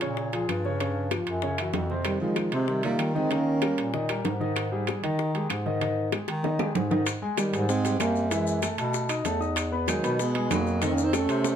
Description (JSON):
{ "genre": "Afro-Cuban jazz", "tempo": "192 BPM", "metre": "4/4", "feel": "straight", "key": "Ab major", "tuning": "A4 = 440 Hz", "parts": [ { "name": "clear concert grand piano", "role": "accompaniment", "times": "0.0-11.5 s", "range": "B2 to D#6", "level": "-30 LUFS", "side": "left 1 dB", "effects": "none" }, { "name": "clear bass clarinet", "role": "bass", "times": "0.0-11.6 s", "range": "Fb2 to Eb3", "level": "-30 LUFS", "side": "equal", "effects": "none" }, { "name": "bongos", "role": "percussion", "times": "0.0-11.6 s", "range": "none", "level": "-34 LUFS", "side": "left 9 dB", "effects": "none" }, { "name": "timbales", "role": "percussion", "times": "0.0-11.5 s", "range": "none", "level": "-32 LUFS", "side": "right 5 dB", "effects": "none" }, { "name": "claves", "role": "percussion", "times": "0.5-11.3 s", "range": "none", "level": "-40 LUFS", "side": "left 5 dB", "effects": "none" }, { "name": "clear tenor saxophone", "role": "second line", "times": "2.0-3.9, 7.4-11.6 s", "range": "D#3 to C4", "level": "-32 LUFS", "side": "right 3 dB", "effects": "none" }, { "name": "mellow trombone", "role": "melody", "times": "2.1-3.9, 7.4-11.6 s", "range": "F#3 to Eb4", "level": "-28 LUFS", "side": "right 3 dB", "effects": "none" }, { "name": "maracas", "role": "percussion", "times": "7.1-11.6 s", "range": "none", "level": "-39 LUFS", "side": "left 6 dB", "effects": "none" } ], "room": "moderate studio reverb, RT60 0.8 s", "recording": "dark, warm production", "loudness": "-24 LUFS", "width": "side -9 dB against mid", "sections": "0.0-7.1 A section; 7.1-11.6 B section", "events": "drum fill 6.3-7.1", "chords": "0.0 Bbm7; 0.8 Dbadd11; 1.4 Gb5; 2.1 Fm11; 3.3 Eb7; 4.6 Ab5; 7.1 Abmaj7; 8.3 Gbm9; 8.9 B7; 9.6 Emaj9; 10.8 F7b13" }